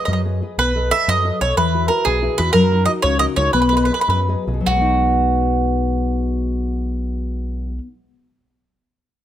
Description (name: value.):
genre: italian folk, Italian serenade.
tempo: 98-125 BPM (dotted quarters).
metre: 6/8.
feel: rubato.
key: B major.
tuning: A4 = 441 Hz.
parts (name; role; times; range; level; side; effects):
mandolin; melody; 0.0-7.8 s; F#4 to E5; -18 LUFS; right 3 dB; none.
nylon-string guitar; accompaniment; 0.0-7.9 s; B2 to D#5; -21 LUFS; left 4 dB; none.
deep dub picked electric bass; bass; 0.1-7.8 s; B1 to F#2; -21 LUFS; equal; none.
room: light reverb.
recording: close, detailed microphones.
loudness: -16 LUFS.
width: side -11 dB against mid.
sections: 0.6-4.7 A section; 4.7-7.1 B section.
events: slowing down 2.5-4.7.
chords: 0.0 B6; 0.6 B7; 1.6 Esus2; 2.5 F#6; 3.5 B6.